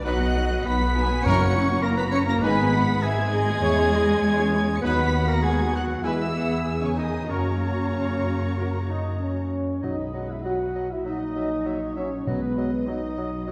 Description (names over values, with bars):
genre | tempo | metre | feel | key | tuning
quick classical-period movement for symphony orchestra | 92-104 BPM | 4/4 | rubato | B major | A4 = 440 Hz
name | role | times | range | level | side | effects
muted studio violin section | melody | 0.0-13.5 s | D#5 to C#7 | -38 LUFS | equal | none
clear oboe | second line | 0.0-13.5 s | C#5 to C#6 | -36 LUFS | equal | none
mellow flute section | second line | 0.0-13.5 s | B4 to C#6 | -36 LUFS | equal | none
muted chamber violin section | second line | 0.0-13.5 s | B4 to A#5 | -38 LUFS | equal | none
warm clarinet | second line | 0.0-13.5 s | B3 to C#5 | -33 LUFS | equal | none
muted chamber viola section | accompaniment | 0.0-13.5 s | F#3 to G#4 | -34 LUFS | equal | none
mellow French horn section | sustained chords | 0.0-13.5 s | F#3 to F#4 | -33 LUFS | equal | none
mellow trumpet section | stabs | 0.0-13.5 s | A#4 to F#5 | -36 LUFS | equal | none
muted chamber cello section | bass | 0.0-13.5 s | A#2 to C#4 | -32 LUFS | equal | none
muted chamber double bass section | bass | 0.0-13.5 s | F#1 to F#2 | -30 LUFS | equal | none
timpani | percussion | 1.3-2.1, 9.8-13.1 s | F#2 to B2 | -32 LUFS | equal | none
warm bassoon | accompaniment | 9.8-13.5 s | F#3 | -37 LUFS | equal | none
room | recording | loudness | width
wet scoring stage reverb, RT60 1.6 s | none | -24 LUFS | mono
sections
0.0-9.8 A section; 9.8-13.5 B section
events
none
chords
0.0 B; 1.3 F#7; 2.4 G#m; 3.6 C#m/E; 4.8 B/D#; 6.0 E; 7.3 F#; 9.8 B; 11.1 F#7/A#; 12.3 B